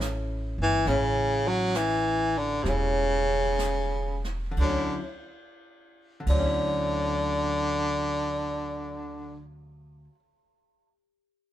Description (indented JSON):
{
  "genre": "jazz ballad",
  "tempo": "59-72 BPM",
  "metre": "4/4",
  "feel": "swing 67% on 8ths",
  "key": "D major",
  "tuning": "A4 = 439 Hz",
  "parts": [
    { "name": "bright baritone saxophone", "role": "melody", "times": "0.0-9.4 s", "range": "C3 to F#3", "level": "-26 LUFS", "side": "equal", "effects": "none" },
    { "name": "archtop guitar, miked and amplified", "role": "accompaniment", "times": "0.0-10.2 s", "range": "D3 to A4", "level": "-35 LUFS", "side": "left 2 dB", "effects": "none" },
    { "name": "upright bass", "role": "bass", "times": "0.0-10.1 s", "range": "E1 to D2", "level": "-31 LUFS", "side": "equal", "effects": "none" },
    { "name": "jazz brush drum kit", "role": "drums", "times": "0.0-6.5 s", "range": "brushed snare drum, hi-hat, kick drum, ride cymbal, snare drum", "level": "-37 LUFS", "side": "right 2 dB", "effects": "none" }
  ],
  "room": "light reverb",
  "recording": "band playing live in one room",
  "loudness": "-24 LUFS",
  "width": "side -12 dB against mid",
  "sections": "0.0-4.6 A section; 4.6-8.6 B section",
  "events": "slowing down 0.0-4.6",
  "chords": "0.0 F#m7; 0.9 A7; 4.6 Dmaj9"
}